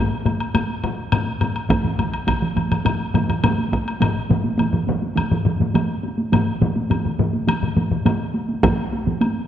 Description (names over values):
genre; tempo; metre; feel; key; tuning
japanese traditional, taiko drum ensemble; 104 BPM; 4/4; straight; none; none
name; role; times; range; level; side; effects
taiko ensemble; percussion; 0.1-9.3 s; none; -24 LUFS; right 1 dB; none
taiko ensemble; percussion; 0.3-9.2 s; none; -23 LUFS; left 4 dB; none
woodblock; percussion; 0.3-9.3 s; none; -28 LUFS; left 3 dB; none
solo taiko drums; percussion; 1.7-9.2 s; none; -24 LUFS; right 5 dB; none
solo taiko drums; percussion; 1.7-3.9, 8.6-8.8 s; none; -24 LUFS; right 1 dB; none
room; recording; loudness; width
wet concert hall reverb, RT60 2.1 s; none; -18 LUFS; side -10 dB against mid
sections
0.0-4.0 A section; 4.0-9.5 B section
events
none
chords
none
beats
0.55 1.12 | 1.70 2.28 2.86 3.44 | 4.02 4.59 5.17 5.75 | 6.33 6.91 7.48 8.06 | 8.64 9.21